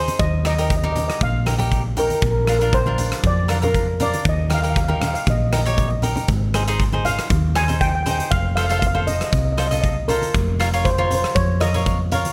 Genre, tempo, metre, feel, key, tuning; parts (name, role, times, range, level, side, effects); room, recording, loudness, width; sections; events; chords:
calypso; 118 BPM; 4/4; straight; A4 = 440 Hz
steel pan; melody; 0.0-12.3 s; Bb4 to Ab5; -26 LUFS; equal
cavaquinho; accompaniment; 0.0-12.3 s; D4 to Eb5; -28 LUFS; equal
hollow-body short-scale fingered electric bass; bass; 0.0-12.2 s; F1 to F2; -24 LUFS; equal
big rock drum kit; drums; 0.1-12.3 s; hi-hat, kick drum, rim click; -26 LUFS; equal
congas; percussion; 0.1-12.3 s; -31 LUFS; equal
light reverb; -20 LUFS; mono
0.0-12.3 A section
drum fill 5.7-6.3
0.2 Eb; 2.2 Bb; 4.3 Eb; 6.3 Ab6; 8.3 F7; 10.3 Bbm/F